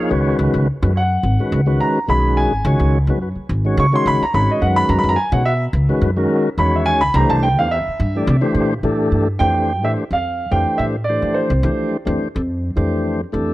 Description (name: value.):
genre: electric jazz fusion.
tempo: 107 BPM.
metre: 4/4.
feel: swing 54% on 16ths.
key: F major from 9.4 s.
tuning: A4 = 440 Hz.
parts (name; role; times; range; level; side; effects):
tonewheel organ; accompaniment; 0.0-13.5 s; Eb3 to D5; -19 LUFS; left 1 dB; slow rotary speaker.
upright bass; bass; 0.1-13.5 s; Ab1 to F3; -18 LUFS; equal; none.
clear concert grand piano; melody; 1.0-11.9 s; C5 to Db6; -19 LUFS; right 1 dB; none.
room: small room ambience.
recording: dry, close 1970s-style studio recording.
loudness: -15 LUFS.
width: side -17 dB against mid.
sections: 0.0-9.4 A section; 9.4-13.5 B section.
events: tonewheel organ fill 0.0-0.4; grand piano solo 0.0-9.4.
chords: 0.1 Db9sus4; 4.6 Gb13sus4; 7.2 C69; 9.4 Fmaj9.